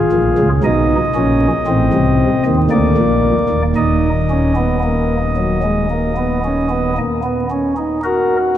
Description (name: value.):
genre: classical, baroque-style 3-part fugue for pipe organ.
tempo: 56 BPM.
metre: 4/4.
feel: straight.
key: Eb minor.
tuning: A4 = 440 Hz.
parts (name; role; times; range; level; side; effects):
pipe organ, flutes; solo; 0.0-8.6 s; Eb1 to Eb5; -13 LUFS; equal; none.
room: wet cathedral reverb, RT60 4.5 s.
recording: dark, warm production, vinyl crackle.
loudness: -13 LUFS.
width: side -11 dB against mid.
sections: 0.0-8.0 A section.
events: none.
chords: 0.0 Fdim; 1.7 Adim; 2.7 Bb; 3.8 Eb5; 8.0 Ebm (rootless).